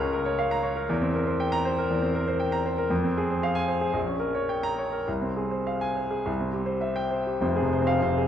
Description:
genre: classical, romantic character piece for solo piano.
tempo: 97-123 BPM.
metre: 4/4.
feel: rubato.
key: F minor.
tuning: A4 = 441 Hz.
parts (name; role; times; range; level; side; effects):
warm baby grand piano; solo; 0.0-8.3 s; F1 to Bb5; -24 LUFS; equal; none.
room: wet scoring stage reverb, RT60 1.6 s.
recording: dark, warm production.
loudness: -24 LUFS.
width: side -9 dB against mid.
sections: 0.0-7.4 A section.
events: none.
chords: 0.0 Bbm/Db; 0.9 C7/E; 2.9 Fm; 4.0 Gdim/Bb; 5.1 Fm/C; 6.3 C; 7.4 Fm.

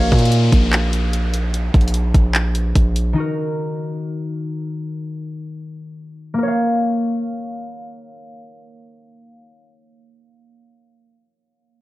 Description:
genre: hip hop, trap.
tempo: 148 BPM.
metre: 4/4.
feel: half-time.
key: Bb minor.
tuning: A4 = 442 Hz.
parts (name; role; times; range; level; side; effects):
concert harp; accompaniment; 0.0-10.7 s; Eb3 to F5; -22 LUFS; left 1 dB; low-pass filter.
distorted 808-style bass; bass; 0.0-3.1 s; Bb1 to Bb2; -17 LUFS; equal; distortion.
downlifter; sound effects; 0.0-3.2 s; none; -30 LUFS; left 2 dB; none.
trap drum kit; drums; 0.1-3.1 s; handclaps, hi-hat, kick drum; -16 LUFS; equal; none.
room: digital ambience.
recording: worn, warbling old tape, cassette tape, warbly pitch drift.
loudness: -17 LUFS.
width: side -18 dB against mid.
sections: 0.0-6.4 A section; 6.4-9.6 B section.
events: filter sweep on harp 0.0-6.4.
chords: 0.0 Bbm; 3.2 Ebm; 6.4 Bbm.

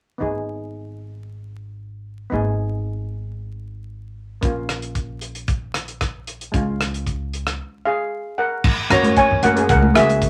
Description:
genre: calypso.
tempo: 114 BPM.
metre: 4/4.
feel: straight.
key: unclear.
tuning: A4 = 440 Hz.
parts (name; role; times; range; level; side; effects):
steel pan; accompaniment; 0.2-10.3 s; G#3 to G#4; -27 LUFS; equal; none.
upright bass; bass; 0.2-10.3 s; G#1 to F#2; -28 LUFS; equal; none.
damped 70s drum kit; drums; 4.4-10.3 s; crash cymbal, hi-hat, kick drum, rim click; -25 LUFS; equal; none.
steel pan; melody; 7.9-10.3 s; G#4 to A#5; -20 LUFS; equal; none.
congas; percussion; 9.0-9.9 s; none; -24 LUFS; equal; none.
room: wet small room reverb, RT60 0.5 s.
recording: vinyl crackle.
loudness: -21 LUFS.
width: mono.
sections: 0.2-8.6 A section; 8.6-10.3 B section.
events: none.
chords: 0.2 G#m; 4.4 A#m; 6.5 C#; 8.6 F#.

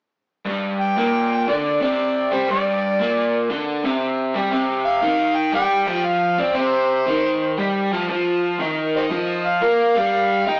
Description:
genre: rock.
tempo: 118 BPM.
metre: 4/4.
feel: swing 68% on 8ths.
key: G minor.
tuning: A4 = 441 Hz.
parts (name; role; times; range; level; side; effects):
crunchy overdriven guitar; riff; 0.5-10.6 s; G2 to Eb5; -22 LUFS; equal; none.
overdriven harmonica; melody; 0.8-10.6 s; G4 to G5; -23 LUFS; equal; none.
room: wet stone room reverb, RT60 1.0 s.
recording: rough rehearsal-room recording, warm saturation, small speaker sound.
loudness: -20 LUFS.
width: mono.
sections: 0.4-10.6 A section.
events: none.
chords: 0.4 Gm; 4.5 C5; 8.6 Eb5.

